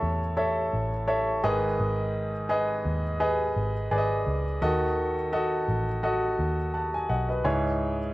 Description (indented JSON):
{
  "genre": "piano-driven pop",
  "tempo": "85 BPM",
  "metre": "4/4",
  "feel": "swing 56% on 16ths",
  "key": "unclear",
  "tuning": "A4 = 441 Hz",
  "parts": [
    { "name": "clear baby grand piano", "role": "accompaniment", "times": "0.0-8.1 s", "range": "G#2 to A5", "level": "-26 LUFS", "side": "equal", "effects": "cassette tape" },
    { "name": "vintage muted picked electric bass", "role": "bass", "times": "0.0-8.1 s", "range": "G#1 to E2", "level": "-30 LUFS", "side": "equal", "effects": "none" }
  ],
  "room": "moderate spring reverb, RT60 2.2 s",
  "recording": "home recording on cassette",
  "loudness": "-24 LUFS",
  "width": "side -18 dB against mid",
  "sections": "0.0-8.1 A section",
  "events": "none",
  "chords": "0.0 A; 1.4 G#m; 4.6 D#dim; 7.4 C#m",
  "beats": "0.38 1.09 | 1.79 2.50 3.21 3.91 | 4.62 5.33 6.03 6.74 | 7.45"
}